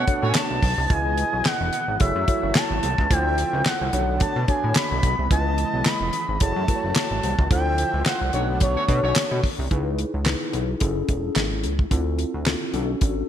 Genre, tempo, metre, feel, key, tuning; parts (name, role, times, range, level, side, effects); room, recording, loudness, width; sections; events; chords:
early-eighties boogie funk; 109 BPM; 4/4; swing 56% on 16ths; C# phrygian; A4 = 445 Hz
expressive synth lead; melody; 0.0-9.4 s; C#5 to B5; -25 LUFS; equal; chorus
warm horn section; second line; 0.0-0.4, 8.1-9.2 s; A3 to C#5; -31 LUFS; right 2 dB
brassy analog pad; sustained chords; 0.0-9.7 s; B2 to E5; -34 LUFS; right 3 dB; chorus
chorused synth bass; bass; 0.0-13.2 s; E1 to B2; -25 LUFS; equal
mellow tine electric piano; accompaniment; 0.1-13.3 s; G#3 to D#5; -28 LUFS; left 2 dB; medium stereo tremolo
damped 70s drum kit; drums; 0.1-13.2 s; handclaps, hi-hat, kick drum, snare drum; -23 LUFS; equal; gated reverb
light reverb, small room ambience; bright 1980s-style digital production; -20 LUFS; side -10 dB against mid
0.0-9.7 A section; 9.7-13.3 B section
band accent 0.0-0.9, 7.5-9.7
0.0 Bm9; 0.9 C#m9; 2.0 F#m9; 3.1 Dm9; 3.9 Bm9; 5.3 C#m9; 6.4 F#m9; 7.5 Dm9; 8.3 Bm9; 9.7 C#m9; 10.8 F#m9; 11.9 Dm9; 12.7 Bm9